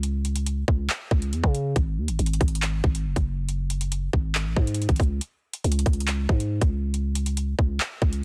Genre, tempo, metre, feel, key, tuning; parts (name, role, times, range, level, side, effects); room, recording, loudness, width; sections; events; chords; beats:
hip hop, drill; 139 BPM; 4/4; half-time; A4 = 440 Hz
growling 808-style bass; bass; 0.0-8.2 s; F#1 to C#3; -28 LUFS; equal
drill drum kit; drums; 0.0-8.2 s; handclaps, hi-hat, kick drum; -26 LUFS; equal; vintage 12-bit sampler grit
digital ambience; dense, heavily limited modern master; -25 LUFS; mono
0.0-8.2 A section
break 5.2-5.6
| 0.03 0.46 0.90 1.33 | 1.76 2.19 2.62 3.05 | 3.49 3.92 4.35 4.78 | 5.21 5.64 6.08 6.51 | 6.94 7.37 7.80 8.23